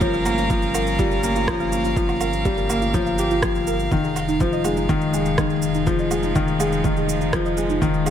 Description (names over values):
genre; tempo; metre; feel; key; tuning
piano and strings electronica; 123 BPM; 4/4; straight; F minor; A4 = 435 Hz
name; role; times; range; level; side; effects
warm string quartet; sustained chords; 0.0-8.1 s; F3 to F5; -27 LUFS; right 1 dB; sidechain pumping
soft round pluck; arpeggios; 0.0-8.1 s; Eb4 to F5; -28 LUFS; right 5 dB; wide subtle chorus, sidechain pumping, digital delay
felt-muted upright piano; riff; 0.0-8.1 s; Eb3 to G4; -22 LUFS; left 3 dB; digital delay
round analog bass; bass; 0.0-8.1 s; F1 to G1; -29 LUFS; right 1 dB; sidechain pumping
electronic kick drum; drums; 0.0-7.9 s; none; -26 LUFS; right 1 dB; overdrive
electronic shaker, woodblock and rim click; drums; 0.0-8.1 s; none; -29 LUFS; right 3 dB; overdrive
room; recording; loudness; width
light reverb, digital ambience; none; -18 LUFS; side -9 dB against mid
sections
0.0-8.1 A section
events
none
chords
0.0 Gm7b5; 3.9 Fm7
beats
| 0.01 0.50 0.99 1.48 | 1.97 2.45 2.94 3.43 | 3.92 4.41 4.89 5.38 | 5.87 6.36 6.84 7.33 | 7.82